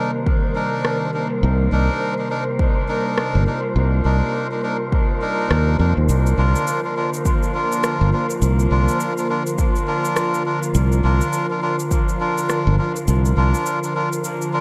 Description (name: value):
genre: ambient dub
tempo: 103 BPM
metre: 4/4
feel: swing 60% on 16ths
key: unclear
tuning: A4 = 438 Hz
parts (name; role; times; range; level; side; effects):
- airy breathy pad; sustained chords; 0.0-14.6 s; C3 to Bb4; -26 LUFS; equal; chorus
- melodica; stabs; 0.0-14.6 s; D4 to Bb4; -26 LUFS; equal; dub echo
- wind-like tuned noise texture; texture; 0.0-14.6 s; C5; -34 LUFS; equal; built-in reverb
- electronic kick drum; drums; 0.3-12.1 s; none; -21 LUFS; equal; overdrive, small room ambience
- electronic rim click and cabasa; drums; 0.8-14.5 s; none; -30 LUFS; equal; overdrive, small room ambience, dub echo
- modern bright fingered electric bass; bass; 1.4-13.5 s; G1 to F2; -19 LUFS; equal; none
room: digital ambience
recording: echo-heavy mix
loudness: -20 LUFS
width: mono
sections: 0.0-14.6 A section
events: kick drops out 14.2-14.6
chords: 0.0 Cm7; 6.1 Bb